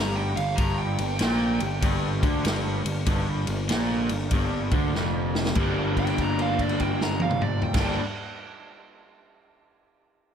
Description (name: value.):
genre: blues rock power trio and southern rock.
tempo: 96 BPM.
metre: 4/4.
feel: swing 65% on 8ths.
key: G minor.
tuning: A4 = 441 Hz.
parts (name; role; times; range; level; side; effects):
dark smooth lead guitar; melody; 0.0-7.9 s; D5 to Bb5; -31 LUFS; right 4 dB; overdrive.
overdriven tonewheel organ; sustained chords; 0.0-8.0 s; D3 to Bb4; -38 LUFS; right 5 dB; none.
raw garage guitar; riff; 0.0-8.0 s; F2 to D4; -28 LUFS; left 1 dB; overdrive, spring reverb.
fuzz picked electric bass; bass; 0.0-8.0 s; F1 to D2; -28 LUFS; equal; overdrive.
vintage drum kit; drums; 0.4-7.9 s; crash cymbal, kick drum, ride cymbal, snare drum, toms; -28 LUFS; equal; none.
room: light reverb.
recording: none.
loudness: -22 LUFS.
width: side -8 dB against mid.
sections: 0.0-5.6 A section; 5.6-8.0 B section.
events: lead electric guitar solo 0.0-5.6; drum fill 4.9-5.6; held note 5.6-7.7.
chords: 0.0 Gm; 5.6 Gm9.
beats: | 0.59 1.21 1.83 2.46 | 3.08 3.70 4.32 4.94 | 5.57 6.19 6.81 7.43.